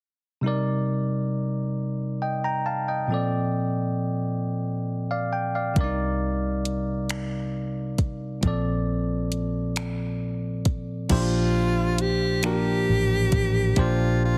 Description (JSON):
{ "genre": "slow six-eight R&B", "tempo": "45 BPM (dotted quarters)", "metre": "6/8", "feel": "straight", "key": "Bb major", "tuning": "A4 = 440 Hz", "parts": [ { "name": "bell-like tine electric piano", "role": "accompaniment", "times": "0.4-14.4 s", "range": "Bb2 to Bb5", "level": "-28 LUFS", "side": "equal", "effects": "none" }, { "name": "vintage muted fingered electric bass", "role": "bass", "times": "5.8-14.4 s", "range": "A1 to C2", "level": "-30 LUFS", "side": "equal", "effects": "none" }, { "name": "smooth R&B drum kit", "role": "drums", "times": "5.8-14.0 s", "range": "crash cymbal, finger snaps, hi-hat, kick drum", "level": "-29 LUFS", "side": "equal", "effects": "none" }, { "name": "breathy tenor saxophone", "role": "melody", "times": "11.1-14.4 s", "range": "F4 to G4", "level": "-28 LUFS", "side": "equal", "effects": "none" } ], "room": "light reverb, digital ambience", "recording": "heavily compressed radio sound, multiband compression", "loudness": "-26 LUFS", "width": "mono", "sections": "0.4-11.1 A section; 11.1-14.4 B section", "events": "none", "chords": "0.4 Cm9; 3.1 Bbmaj9; 5.8 Cm9; 8.4 Bbmaj9; 11.1 Bb6" }